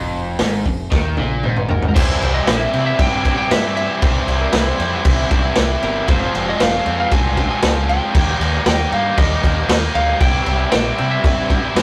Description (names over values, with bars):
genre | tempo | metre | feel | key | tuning
garage rock duo or trio | 116 BPM | 4/4 | straight | unclear | A4 = 440 Hz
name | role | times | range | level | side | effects
overdriven electric guitar | riff | 0.0-11.8 s | F2 to F4 | -23 LUFS | equal | none
growling fingered electric bass | bass | 0.0-11.8 s | E1 to C3 | -24 LUFS | equal | overdrive, tube saturation
raw garage drum kit | drums | 0.4-11.8 s | crash cymbal, hi-hat, kick drum, snare drum, toms | -20 LUFS | equal | none
electric slide guitar | melody | 1.7-11.8 s | Bb4 to Ab5 | -25 LUFS | equal | none
room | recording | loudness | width
light reverb | rough rehearsal-room recording, tube saturation | -17 LUFS | mono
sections
0.0-2.0 A section; 2.0-11.8 B section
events
drum fill 0.9-2.0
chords
0.0 Fm; 2.0 C; 6.1 Fm; 8.1 Eb; 10.2 C